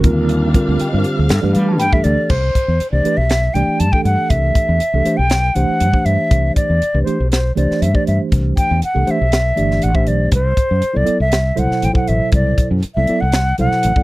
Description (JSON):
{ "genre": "electric jazz fusion", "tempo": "120 BPM", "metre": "4/4", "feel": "straight", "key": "C lydian", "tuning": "A4 = 440 Hz", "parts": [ { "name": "mellow tine electric piano", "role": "accompaniment", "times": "0.0-14.0 s", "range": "B2 to B5", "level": "-19 LUFS", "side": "right 2 dB", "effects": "medium stereo tremolo" }, { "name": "warm studio string section", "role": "sustained chords", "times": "0.0-2.3 s", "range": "D3 to F5", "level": "-27 LUFS", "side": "left 2 dB", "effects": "none" }, { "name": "fretless electric bass", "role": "bass", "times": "0.0-14.0 s", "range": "G1 to G3", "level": "-16 LUFS", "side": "equal", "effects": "none" }, { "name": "crisp fusion drum kit", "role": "drums", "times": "0.0-14.0 s", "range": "crash cymbal, hi-hat, kick drum, snare drum", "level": "-17 LUFS", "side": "equal", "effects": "none" }, { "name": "hollow concert flute", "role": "melody", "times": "1.8-14.0 s", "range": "C5 to A5", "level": "-18 LUFS", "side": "equal", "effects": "none" } ], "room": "little or no reverb", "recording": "dry, close 1970s-style studio recording", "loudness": "-13 LUFS", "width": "side -19 dB against mid", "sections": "0.0-2.3 A section; 2.3-14.0 B section", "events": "none", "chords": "0.0 Ebmaj9; 1.3 G7; 2.3 Cmaj7; 10.3 D13", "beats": "| 0.30 0.80 1.30 1.80 | 2.30 2.80 3.30 3.81 | 4.31 4.81 5.31 5.81 | 6.31 6.82 7.32 7.82 | 8.32 8.82 9.33 9.83 | 10.33 10.83 11.33 11.84 | 12.34 12.84 13.34 13.84" }